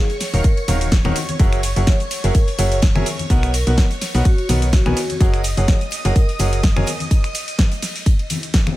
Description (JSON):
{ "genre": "piano house", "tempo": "126 BPM", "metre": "4/4", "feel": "swing 55% on 16ths", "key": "F# major", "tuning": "A4 = 440 Hz", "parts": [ { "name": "vibraphone with medium mallets", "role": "melody", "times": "0.0-6.2 s", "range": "F#4 to C#5", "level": "-29 LUFS", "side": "equal", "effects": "vintage 12-bit sampler grit, tape echo" }, { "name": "string machine, violins", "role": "sustained chords", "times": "0.0-8.8 s", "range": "C#5 to D#6", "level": "-30 LUFS", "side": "equal", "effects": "ensemble chorus, sidechain pumping" }, { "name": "clear upright piano", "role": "riff", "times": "0.0-6.9 s", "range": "D#3 to G#5", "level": "-25 LUFS", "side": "equal", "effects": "sidechain pumping, tape echo" }, { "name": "house drum kit", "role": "drums", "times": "0.1-8.8 s", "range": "finger snaps, hi-hat, ride cymbal, shaker, snare drum", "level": "-25 LUFS", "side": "equal", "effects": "small room reverb" }, { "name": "open jazz drum kit", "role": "drums", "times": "0.1-8.7 s", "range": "hi-hat, snare drum", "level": "-35 LUFS", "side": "left 2 dB", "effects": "none" }, { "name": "tambourine and congas", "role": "percussion", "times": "0.1-8.8 s", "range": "none", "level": "-29 LUFS", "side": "left 4 dB", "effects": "none" }, { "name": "solid FM bass", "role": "bass", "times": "0.3-6.8 s", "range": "D#1 to B1", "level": "-19 LUFS", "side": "equal", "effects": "sidechain pumping" }, { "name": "electronic kick drum", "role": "drums", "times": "0.4-8.6 s", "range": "none", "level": "-15 LUFS", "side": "equal", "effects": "small room reverb" } ], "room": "small room ambience", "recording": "none", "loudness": "-15 LUFS", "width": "side -16 dB against mid", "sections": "0.0-8.8 A section", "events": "none", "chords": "0.0 D#m9; 1.4 F#9; 3.3 Bmaj7; 5.2 F#69; 7.1 N.C.", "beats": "0.44 0.92 | 1.40 1.87 2.35 2.82 | 3.30 3.78 4.25 4.73 | 5.21 5.68 6.16 6.63 | 7.11 7.59 8.06 8.54" }